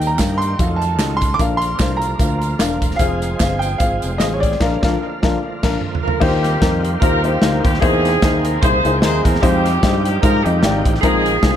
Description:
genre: uptempo gospel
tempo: 150 BPM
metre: 4/4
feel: swing 56% on 8ths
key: Eb major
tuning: A4 = 437 Hz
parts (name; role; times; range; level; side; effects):
- clear baby grand piano; melody; 0.0-5.8 s; Db5 to D6; -23 LUFS; right 2 dB; dub echo
- dark baby grand piano; accompaniment; 0.0-11.6 s; Bb2 to F5; -21 LUFS; left 4 dB; dub echo
- bright tonewheel organ; sustained chords; 0.0-11.6 s; C3 to Ab4; -27 LUFS; right 4 dB; slow rotary speaker, overdrive, chorus vibrato
- fingered electric bass; bass; 0.0-11.6 s; Fb1 to Ab2; -21 LUFS; equal; none
- natural country drum kit; drums; 0.0-11.5 s; crash cymbal, hi-hat, kick drum, snare drum, toms; -19 LUFS; equal; none
- tambourine and handclaps; percussion; 0.0-4.5 s; none; -32 LUFS; right 6 dB; none
- warm horn section; melody; 6.0-11.6 s; Bb3 to C5; -19 LUFS; right 1 dB; dub echo
room: light reverb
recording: echo-heavy mix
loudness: -14 LUFS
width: side -10 dB against mid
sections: 0.0-6.2 A section; 6.2-11.6 B section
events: band accent 4.6-6.2; drum fill 5.4-6.2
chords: 0.0 Eb; 0.6 F7b9; 1.4 Bb; 3.0 Fm; 4.6 Bb; 6.2 Eb69; 7.8 C7alt; 9.4 Fm9; 11.0 Bb9sus4

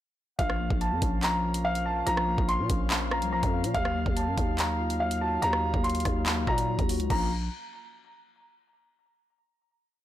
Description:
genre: hip hop, drill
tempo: 143 BPM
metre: 4/4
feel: half-time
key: Bb harmonic minor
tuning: A4 = 440 Hz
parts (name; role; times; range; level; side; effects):
- dark grand piano; melody; 0.4-7.3 s; F5 to C6; -30 LUFS; equal; low-pass filter, tape echo
- mellow tine electric piano; accompaniment; 0.4-7.3 s; F3 to F5; -34 LUFS; moving between left 11 dB and left 1 dB; auto-pan, low-pass filter
- mellow brass ensemble; sustained chords; 0.4-7.3 s; Bb2 to F5; -39 LUFS; left 1 dB; none
- growling 808-style bass; bass; 0.4-7.5 s; Bb1 to Bb2; -30 LUFS; right 1 dB; none
- drill drum kit; drums; 0.4-7.2 s; crash cymbal, handclaps, hi-hat, kick drum, rim click; -30 LUFS; equal; none
room: light reverb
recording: blown-out, overdriven recording, overdrive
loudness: -25 LUFS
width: side -13 dB against mid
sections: 0.4-7.1 hook; 7.1-8.8 final chord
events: none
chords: 0.4 Bbm; 3.7 Ebmadd9; 7.1 Bbm

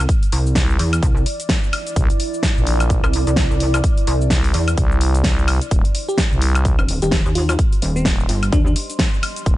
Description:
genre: bass house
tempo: 128 BPM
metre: 4/4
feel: swing 58% on 16ths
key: unclear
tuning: A4 = 440 Hz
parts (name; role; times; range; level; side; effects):
- pulsing pluck wobble bass; bass; 0.0-8.7 s; Eb1 to E2; -18 LUFS; equal; chorus, tube saturation, sidechain pumping
- big-room dance drum kit; drums; 0.0-9.6 s; cabasa, hi-hat, snare drum, woodblock; -23 LUFS; left 1 dB; none
- deep dark ambient pad; texture; 0.5-9.6 s; E4 to C6; -28 LUFS; right 2 dB; chorus, built-in reverb, sidechain pumping
- electronic kick drum; drums; 0.1-9.6 s; none; -18 LUFS; equal; none
- growling FM bass; bass; 0.6-9.6 s; Eb1 to C2; -18 LUFS; equal; tube saturation, sidechain pumping
- bell-like FM electric piano; melody; 6.1-8.7 s; C4 to G4; -25 LUFS; left 2 dB; chorus, cassette tape, tape echo
room: little or no reverb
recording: nothing above 10.7 kHz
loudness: -15 LUFS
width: side -16 dB against mid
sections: 0.0-9.6 A section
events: none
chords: 0.0 Cadd9; 5.7 Eb6

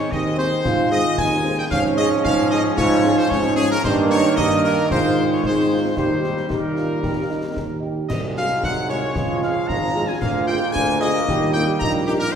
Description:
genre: military-style march for wind band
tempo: 113 BPM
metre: 2/4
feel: straight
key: Ab major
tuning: A4 = 440 Hz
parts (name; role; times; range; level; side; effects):
- clear trumpet section; melody; 0.0-12.4 s; G4 to Bb5; -24 LUFS; left 2 dB; none
- warm euphonium; second line; 0.0-12.3 s; C4 to G4; -24 LUFS; right 3 dB; none
- bright trombone section; sustained chords; 0.0-12.3 s; Eb3 to Db4; -28 LUFS; right 1 dB; none
- warm tuba; bass; 0.0-12.3 s; Ab1 to Ab2; -22 LUFS; right 2 dB; none
- concert snare drum, concert bass drum and clash cymbals; drums; 0.1-12.3 s; none; -29 LUFS; left 1 dB; none
- dark French horn section; accompaniment; 0.4-12.2 s; Ab3 to Ab4; -27 LUFS; left 4 dB; none
room: wet concert hall reverb, RT60 2.0 s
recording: recorded in a church or concert hall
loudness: -17 LUFS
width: side -7 dB against mid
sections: 0.0-12.4 A section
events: none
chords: 0.0 Ab; 1.7 Db/Ab; 3.8 Eb/G; 4.9 Ab; 6.0 Eb; 8.1 Ab7/C; 9.2 Db; 10.2 Bb7/D; 11.3 Eb

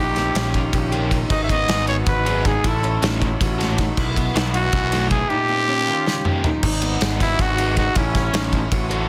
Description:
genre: math rock and midwest emo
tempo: 316 BPM (eighths)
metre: 7/8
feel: straight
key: unclear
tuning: A4 = 440 Hz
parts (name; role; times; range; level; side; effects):
- growling trumpet; melody; 0.0-8.7 s; C#4 to E5; -24 LUFS; equal; slapback echo
- twelve-string electric guitar; accompaniment; 0.0-6.6 s; E2 to F#4; -33 LUFS; equal; none
- qanun; arpeggios; 0.0-9.1 s; G#3 to G4; -28 LUFS; equal; none
- growling picked electric bass; bass; 0.0-9.1 s; G#1 to B1; -26 LUFS; equal; overdrive
- loose indie drum kit; drums; 0.2-9.0 s; crash cymbal, kick drum, ride cymbal, snare drum, toms; -25 LUFS; equal; none
- crunchy overdriven guitar; riff; 0.3-9.1 s; D#3 to A4; -32 LUFS; equal; spring reverb
room: light reverb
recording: dense, heavily limited modern master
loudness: -20 LUFS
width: mono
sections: 0.0-6.6 A section; 6.6-9.1 B section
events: drum fill 6.1-6.6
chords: 0.0 D#7/A#; 1.3 G#m7; 2.6 F#m7/A; 4.0 B7sus4; 5.3 D#7/A#; 6.6 G#m7; 8.0 F#m7/A

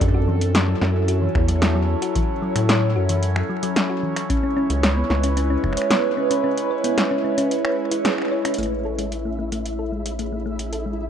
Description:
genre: IDM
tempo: 112 BPM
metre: 4/4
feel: straight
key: A major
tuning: A4 = 440 Hz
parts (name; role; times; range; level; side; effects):
- warbly tape-like pad; sustained chords; 0.0-11.1 s; F#3 to C#5; -23 LUFS; right 2 dB; chorus, built-in reverb, phaser
- rubbery square bass; bass; 0.0-11.1 s; A1 to A2; -22 LUFS; equal; none
- electro analog drum machine; drums; 0.0-10.8 s; finger snaps, hi-hat, snare drum; -24 LUFS; equal; none
- electronic kick drum; drums; 0.0-5.8 s; none; -23 LUFS; equal; none
- thumb-piano-like synth pluck; arpeggios; 0.1-11.0 s; E3 to C#5; -27 LUFS; left 3 dB; chorus, ping-pong delay
- flickering grainy texture; texture; 9.0-11.1 s; E4 to E5; -33 LUFS; equal; built-in reverb
room: light reverb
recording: rough home demo mix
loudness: -19 LUFS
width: side -8 dB against mid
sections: 0.0-8.6 A section; 8.6-11.1 B section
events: band accent 8.0; filter sweep on ambient pad 8.6-11.1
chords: 0.0 F#m7; 4.3 C#m7; 8.6 Amaj7

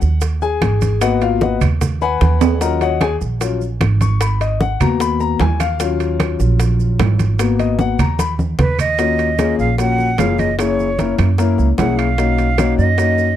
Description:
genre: Afro-Cuban jazz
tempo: 150 BPM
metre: 4/4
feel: straight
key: Eb minor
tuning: A4 = 441 Hz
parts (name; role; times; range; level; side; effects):
- clear concert grand piano; accompaniment; 0.0-13.3 s; Gb3 to Db6; -19 LUFS; left 7 dB; none
- upright bass; bass; 0.0-13.3 s; Gb1 to Gb2; -17 LUFS; right 2 dB; none
- bongos; percussion; 0.0-13.4 s; none; -26 LUFS; left 4 dB; none
- congas; percussion; 0.0-13.4 s; none; -21 LUFS; right 1 dB; none
- maracas; percussion; 0.0-13.4 s; none; -35 LUFS; right 21 dB; none
- timbales; percussion; 0.2-13.2 s; none; -25 LUFS; right 13 dB; none
- claves; percussion; 0.6-12.8 s; none; -32 LUFS; right 18 dB; none
- breathy bright concert flute; melody; 8.6-13.4 s; Cb5 to Gb5; -19 LUFS; right 3 dB; none
room: small room ambience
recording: dry, close 1970s-style studio recording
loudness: -14 LUFS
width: side -11 dB against mid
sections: 0.0-9.0 A section; 9.0-13.4 B section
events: grand piano solo 0.0-9.0; drum fill 2.4, 8.2-9.0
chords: 0.0 Ebm; 1.0 Abm7; 2.6 Ebm7; 4.2 Abm7; 5.8 Ebm7; 7.4 Abm7; 9.0 Ebm9; 10.6 Gb7; 12.2 Bmaj9

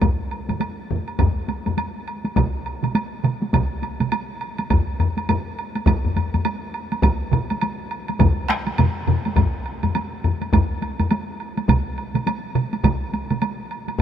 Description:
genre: japanese traditional, taiko drum ensemble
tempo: 103 BPM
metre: 4/4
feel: swing 60% on 16ths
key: none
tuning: none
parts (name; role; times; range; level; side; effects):
- taiko ensemble; percussion; 0.0-14.0 s; none; -26 LUFS; right 1 dB; none
- taiko ensemble; percussion; 0.0-11.1 s; none; -22 LUFS; left 3 dB; none
- taiko ensemble; percussion; 0.0-14.0 s; none; -23 LUFS; equal; none
- woodblock; percussion; 0.0-14.0 s; none; -29 LUFS; right 3 dB; none
- taiko ensemble; percussion; 2.4-13.4 s; none; -24 LUFS; right 4 dB; none
room: moderate huge ambient reverb, RT60 6.9 s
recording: minimal, uncompressed stereo recording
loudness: -20 LUFS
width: side -9 dB against mid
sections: 0.0-14.0 A section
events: none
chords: none

